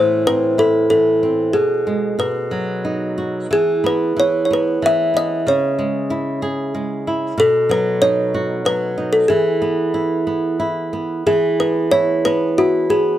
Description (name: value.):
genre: children's music, lullaby.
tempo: 93 BPM.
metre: 3/4.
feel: rubato.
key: E major.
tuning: A4 = 438 Hz.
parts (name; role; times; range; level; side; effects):
kalimba; melody; 0.0-13.2 s; F#4 to E5; -17 LUFS; equal; none.
flamenco guitar; accompaniment; 0.0-13.2 s; A2 to G#4; -21 LUFS; right 2 dB; none.
room: light reverb.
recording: none.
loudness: -15 LUFS.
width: side -12 dB against mid.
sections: 0.0-11.3 A section; 11.3-13.2 A section.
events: none.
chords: 0.0 Am; 1.6 G#m/B; 2.2 B; 3.5 E5; 5.5 C#m; 7.4 B; 9.3 E5.